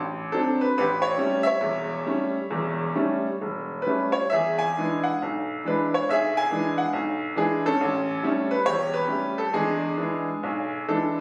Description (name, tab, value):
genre	solo jazz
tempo	138 BPM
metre	4/4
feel	swing 65% on 8ths, rubato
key	unclear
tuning	A4 = 440 Hz
part	bright upright piano	solo	0.0-11.2 s	E1 to G#5	-25 LUFS	equal	none
room	moderate large studio reverb, RT60 1.3 s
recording	recorded on a phone in the room, club reverb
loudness	-25 LUFS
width	mono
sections	0.0-11.2 A section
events	none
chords	0.0 D7; 0.8 A7; 4.3 E7; 7.8 A7; 9.5 E7